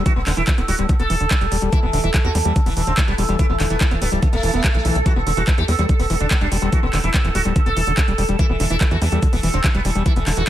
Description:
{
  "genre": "psychedelic trance",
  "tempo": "144 BPM",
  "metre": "4/4",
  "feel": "straight",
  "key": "E minor",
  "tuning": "A4 = 440 Hz",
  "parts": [
    { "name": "overtone-sweeping drone", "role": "sustained chords", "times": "0.0-10.5 s", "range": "A4", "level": "-27 LUFS", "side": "right 2 dB", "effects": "chorus, built-in reverb, sidechain pumping" },
    { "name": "overdriven acid bass", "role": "riff", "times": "0.0-10.4 s", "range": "D3 to B3", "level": "-25 LUFS", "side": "moving between left 4 dB and right 2 dB", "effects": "distortion, auto-pan, sidechain pumping, ping-pong delay" },
    { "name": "tight sequencer bass", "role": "bass", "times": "0.0-10.4 s", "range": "D1 to E2", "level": "-21 LUFS", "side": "equal", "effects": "tube saturation" },
    { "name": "sitar", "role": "melody", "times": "0.1-10.4 s", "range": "E3 to A4", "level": "-25 LUFS", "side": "right 1 dB", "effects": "phaser, sidechain pumping, ping-pong delay" },
    { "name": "electronic kick drum", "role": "drums", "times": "0.1-10.1 s", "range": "none", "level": "-17 LUFS", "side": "equal", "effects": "overdrive" },
    { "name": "garage drum kit", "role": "drums", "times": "0.1-10.5 s", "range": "handclaps, hi-hat", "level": "-26 LUFS", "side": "right 1 dB", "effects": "overdrive" }
  ],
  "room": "little or no reverb",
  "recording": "none",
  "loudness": "-16 LUFS",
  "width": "side -12 dB against mid",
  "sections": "0.0-10.5 A section",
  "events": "none",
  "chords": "0.0 E5"
}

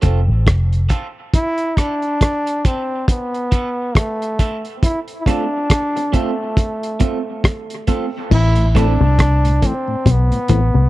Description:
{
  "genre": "dub reggae",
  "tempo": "69 BPM",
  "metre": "4/4",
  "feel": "swing 58% on 16ths",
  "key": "A minor",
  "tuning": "A4 = 440 Hz",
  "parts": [
    { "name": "electric guitar at the edge of break-up", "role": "accompaniment", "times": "0.0-8.9 s", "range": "A3 to A4", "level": "-25 LUFS", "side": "right 5 dB", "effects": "spring reverb, high-pass filter, dub echo" },
    { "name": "vintage muted fingered electric bass", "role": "bass", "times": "0.0-0.9, 8.3-10.9 s", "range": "F1 to C2", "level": "-14 LUFS", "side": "equal", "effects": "none" },
    { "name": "cloth-damped thuddy drum kit", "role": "drums", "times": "0.0-10.7 s", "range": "crash cymbal, hi-hat, kick drum, rim click", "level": "-16 LUFS", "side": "equal", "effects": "none" },
    { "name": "bright trombone", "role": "melody", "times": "1.4-10.9 s", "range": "A3 to E4", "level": "-21 LUFS", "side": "equal", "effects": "dub echo" },
    { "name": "electric guitar with an envelope filter", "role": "riff", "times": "8.3-10.9 s", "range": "A2 to C3", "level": "-21 LUFS", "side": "left 6 dB", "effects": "none" },
    { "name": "mellow tonewheel organ", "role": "accompaniment", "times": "8.6-10.8 s", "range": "A2 to C4", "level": "-24 LUFS", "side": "left 3 dB", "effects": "overdrive, chorus vibrato, slow rotary speaker" }
  ],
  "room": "studio reverb",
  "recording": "dry, close 1970s-style studio recording",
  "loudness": "-15 LUFS",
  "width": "side -17 dB against mid",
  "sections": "0.0-8.3 A section; 8.3-10.9 B section",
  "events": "filter sweep on clean electric guitar 0.0-4.8; break 1.3-8.3",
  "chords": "0.0 F; 1.3 Am; 4.8 F; 8.3 Am"
}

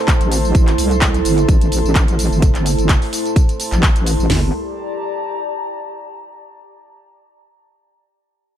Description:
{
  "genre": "bass house",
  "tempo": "128 BPM",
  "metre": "4/4",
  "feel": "swing 54% on 16ths",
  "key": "G minor",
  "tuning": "A4 = 442 Hz",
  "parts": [
    { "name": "dark analog pad", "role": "sustained chords", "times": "0.0-4.5 s", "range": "G3 to C5", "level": "-28 LUFS", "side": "right 1 dB", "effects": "wide subtle chorus, sidechain pumping" },
    { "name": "warbly tape-like pad", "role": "texture", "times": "0.0-6.1 s", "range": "E4 to C6", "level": "-22 LUFS", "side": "right 2 dB", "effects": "chorus, built-in reverb, phaser, sidechain pumping" },
    { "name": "house drum kit", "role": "drums", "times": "0.1-4.4 s", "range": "hi-hat, kick drum, snare drum, toms", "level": "-14 LUFS", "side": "equal", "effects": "none" },
    { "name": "house drum kit", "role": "drums", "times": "0.1-4.3 s", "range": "handclaps, hi-hat, tambourine", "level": "-22 LUFS", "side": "equal", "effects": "overdrive" },
    { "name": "wobble bass", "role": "bass", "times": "0.2-4.5 s", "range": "G1 to C2", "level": "-17 LUFS", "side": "equal", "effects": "chorus, sidechain pumping" }
  ],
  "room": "little or no reverb",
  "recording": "none",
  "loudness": "-14 LUFS",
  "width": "side -10 dB against mid",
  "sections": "0.0-4.3 A section; 4.3-6.2 B section",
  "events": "filter sweep on wobble bass 0.0-4.3",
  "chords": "0.0 Am; 4.3 Gmadd9"
}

